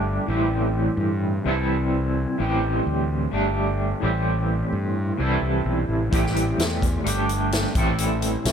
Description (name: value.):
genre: psychedelic rock.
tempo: 128 BPM.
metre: 4/4.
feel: straight.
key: A minor.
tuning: A4 = 440 Hz.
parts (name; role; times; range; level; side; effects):
twangy electric guitar; riff; 0.0-8.5 s; A2 to A4; -23 LUFS; right 1 dB; tremolo, double-tracked left and right.
fuzz fingered electric bass; bass; 0.0-8.5 s; G1 to G2; -25 LUFS; equal; overdrive.
vintage drum kit; drums; 6.1-8.5 s; hi-hat, kick drum, snare drum; -25 LUFS; left 1 dB; none.
room: small room ambience.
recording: none.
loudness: -20 LUFS.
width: side -7 dB against mid.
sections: 0.0-8.5 A section.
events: none.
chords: 0.3 Am7; 1.5 C6; 2.4 Am7; 3.3 Gsus2; 4.0 Am7; 5.2 C6; 6.1 Am7; 7.1 Gsus2; 7.8 Am7.